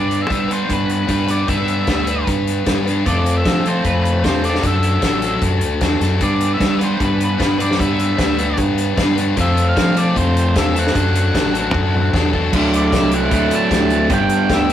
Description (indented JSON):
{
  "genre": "indie rock",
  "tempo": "152 BPM",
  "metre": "4/4",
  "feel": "straight",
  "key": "G major",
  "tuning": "A4 = 440 Hz",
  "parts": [
    { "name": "octave-fuzz lead guitar", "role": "melody", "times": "0.0-14.7 s", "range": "B4 to A5", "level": "-23 LUFS", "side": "right 1 dB", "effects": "distortion" },
    { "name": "overdriven electric guitar", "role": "riff", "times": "0.0-14.7 s", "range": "G2 to B4", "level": "-19 LUFS", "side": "left 3 dB", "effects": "none" },
    { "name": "modern bright fingered electric bass", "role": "bass", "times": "0.0-14.7 s", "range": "G1 to G3", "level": "-20 LUFS", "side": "right 1 dB", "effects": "none" },
    { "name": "loose indie drum kit", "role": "drums", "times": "0.1-14.7 s", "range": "crash cymbal, hi-hat, kick drum, snare drum, toms", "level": "-21 LUFS", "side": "equal", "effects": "none" },
    { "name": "crunchy overdriven guitar", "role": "riff", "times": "12.5-14.7 s", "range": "F#3 to G4", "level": "-18 LUFS", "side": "right 3 dB", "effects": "none" }
  ],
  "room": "moderate small room reverb, RT60 0.5 s",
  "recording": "rough rehearsal-room recording, warm saturation",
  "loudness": "-14 LUFS",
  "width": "side -10 dB against mid",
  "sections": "0.0-12.5 A section; 12.5-14.7 B section",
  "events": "drum fill 11.7-12.5",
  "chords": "0.0 G6; 3.1 F; 4.6 Dadd9; 6.2 G6; 9.4 F; 10.9 Dadd9; 14.1 G"
}